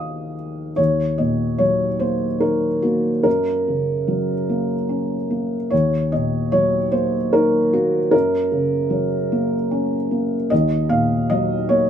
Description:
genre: neoclassical minimalist piano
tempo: 74 BPM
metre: 3/4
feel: rubato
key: Eb dorian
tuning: A4 = 440 Hz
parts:
  - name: felt-muted upright piano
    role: solo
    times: 0.0-11.9 s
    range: Eb2 to Eb6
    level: -17 LUFS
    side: equal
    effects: none
room: light reverb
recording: minimal, uncompressed stereo recording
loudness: -17 LUFS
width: side -9 dB against mid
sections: 0.8-11.9 A section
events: none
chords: 0.0 Ebmadd9; 0.8 Ebm; 3.3 Gb; 5.7 Ebm; 8.1 Gb; 10.5 Ebm

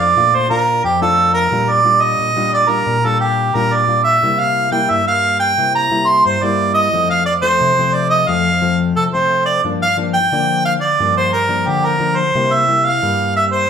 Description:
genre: samba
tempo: 89 BPM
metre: 4/4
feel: straight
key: unclear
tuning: A4 = 441 Hz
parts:
  - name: warm harmonica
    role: melody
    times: 0.0-13.7 s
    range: G4 to C6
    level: -14 LUFS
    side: right 2 dB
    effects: none
  - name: nylon-string guitar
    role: accompaniment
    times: 0.0-13.7 s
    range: F2 to F4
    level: -19 LUFS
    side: left 3 dB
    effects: none
room: wet large studio reverb, RT60 0.9 s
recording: heard from further back in the room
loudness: -13 LUFS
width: side -7 dB against mid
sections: 0.0-13.7 A section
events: none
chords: 0.0 Bbmaj7; 1.5 Gm7/Bb; 4.2 C7; 6.9 F; 9.6 Gm7; 12.3 C7

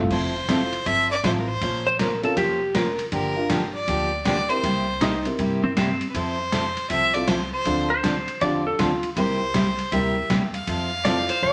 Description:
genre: country, western swing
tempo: 159 BPM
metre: 4/4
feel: swing 64% on 8ths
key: F major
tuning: A4 = 440 Hz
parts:
  - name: warm upright piano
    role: accompaniment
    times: 0.0-11.3 s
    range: C4 to C5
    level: -30 LUFS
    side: equal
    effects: none
  - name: upright bass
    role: bass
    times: 0.0-11.5 s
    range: F1 to G2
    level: -36 LUFS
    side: equal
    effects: none
  - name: clear fiddle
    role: melody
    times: 0.1-11.5 s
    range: Bb4 to F5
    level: -28 LUFS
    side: equal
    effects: none
  - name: picked steel-string acoustic guitar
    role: accompaniment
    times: 0.1-11.5 s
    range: C3 to C5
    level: -29 LUFS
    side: equal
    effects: none
  - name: trip hop sampler-style drum kit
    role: drums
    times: 0.1-11.5 s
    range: crash cymbal, hi-hat, kick drum, ride cymbal, snare drum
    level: -31 LUFS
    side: equal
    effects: none
  - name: clean lap steel guitar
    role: second line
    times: 1.9-11.5 s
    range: C4 to D5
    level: -26 LUFS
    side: equal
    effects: none
room: wet studio reverb, RT60 0.9 s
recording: none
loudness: -23 LUFS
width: mono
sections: 0.1-11.5 A section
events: none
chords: 0.1 Fmaj7; 1.6 Bbmadd9; 3.1 Gm7; 4.6 C7; 6.1 Fmaj7; 7.7 Dm7; 9.2 C7; 10.7 Fmaj7

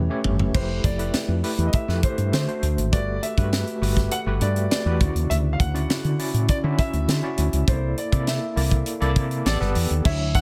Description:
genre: polished 1980s jazz-funk pop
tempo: 101 BPM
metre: 4/4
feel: straight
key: D major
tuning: A4 = 440 Hz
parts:
  - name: warm grand piano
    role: melody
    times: 0.0-10.4 s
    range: C5 to F#5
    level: -34 LUFS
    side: equal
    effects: digital delay
  - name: overdriven tine electric piano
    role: accompaniment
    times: 0.0-10.4 s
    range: C#3 to E5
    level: -30 LUFS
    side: equal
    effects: fast tremolo, analog chorus
  - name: woody fretless electric bass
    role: bass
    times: 0.0-10.4 s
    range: F1 to D3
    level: -25 LUFS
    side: equal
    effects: none
  - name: tight funk drum kit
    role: drums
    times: 0.2-10.4 s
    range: crash cymbal, hi-hat, kick drum, snare drum, toms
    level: -26 LUFS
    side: equal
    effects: none
room: studio reverb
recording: none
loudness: -23 LUFS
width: mono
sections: 0.5-10.1 A section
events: drum fill 0.0-0.5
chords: 0.0 A9; 0.5 Fmaj9#11; 2.3 D7; 2.9 Gmaj9; 5.0 Dmaj9; 7.7 C13; 9.5 A9sus4

